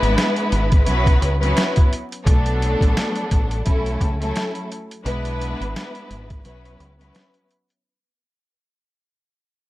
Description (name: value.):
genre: hip hop, boom-bap hip-hop.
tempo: 86 BPM.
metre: 4/4.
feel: swing 57% on 16ths.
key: B dorian.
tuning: A4 = 441 Hz.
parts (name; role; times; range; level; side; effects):
warm studio string section; accompaniment; 0.0-7.5 s; F#3 to B4; -23 LUFS; equal; cassette tape, plate reverb.
deep dub fingered electric bass; bass; 0.0-7.1 s; G#1 to C#2; -22 LUFS; equal; none.
boom bap sampler-style drum kit; drums; 0.0-7.8 s; hi-hat, kick drum, snare drum; -18 LUFS; equal; none.
room: light reverb.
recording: vinyl crackle.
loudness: -17 LUFS.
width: side -17 dB against mid.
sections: 0.0-2.3 A section; 2.3-7.8 B section.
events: fade-out 2.3-7.8; break 6.4-7.8.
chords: 0.0 E7; 0.9 F#7sus4/B; 2.3 Bm7; 3.7 A6/B; 5.1 E7; 6.4 F#7sus4/B.